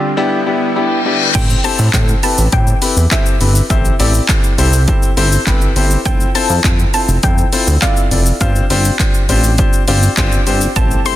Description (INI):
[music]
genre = dance-pop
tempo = 102 BPM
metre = 4/4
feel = straight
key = A minor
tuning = A4 = 439 Hz
[part]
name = warm grand piano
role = accompaniment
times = 0.0-11.2 s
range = B3 to C6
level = -18 LUFS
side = left 3 dB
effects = sidechain pumping
[part]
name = soft supersaw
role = sustained chords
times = 0.0-1.3, 10.8-11.2 s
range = C3 to F4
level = -21 LUFS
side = right 2 dB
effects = sidechain pumping
[part]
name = reverse cymbal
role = sound effects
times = 0.7-1.3 s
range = none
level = -18 LUFS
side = left 7 dB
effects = none
[part]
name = soft round pluck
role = melody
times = 1.3-11.2 s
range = E5 to C6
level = -22 LUFS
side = equal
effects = chorus, dub echo
[part]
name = chorused synth bass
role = bass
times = 1.3-11.0 s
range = F1 to A2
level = -14 LUFS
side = equal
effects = sidechain pumping
[part]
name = house drum kit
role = drums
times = 1.3-11.2 s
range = crash cymbal, handclaps, hi-hat, kick drum, shaker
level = -14 LUFS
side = equal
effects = none
[sound]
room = light reverb, digital ambience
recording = dense, heavily limited modern master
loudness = -11 LUFS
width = side -14 dB against mid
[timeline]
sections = 0.0-1.3 A section; 1.3-11.2 B section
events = break 0.0-1.3; reverse cymbal 0.7-1.3; grand piano fill 9.6-10.8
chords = 0.2 Em7; 1.3 Am7; 6.1 Fmaj7; 8.4 G7sus4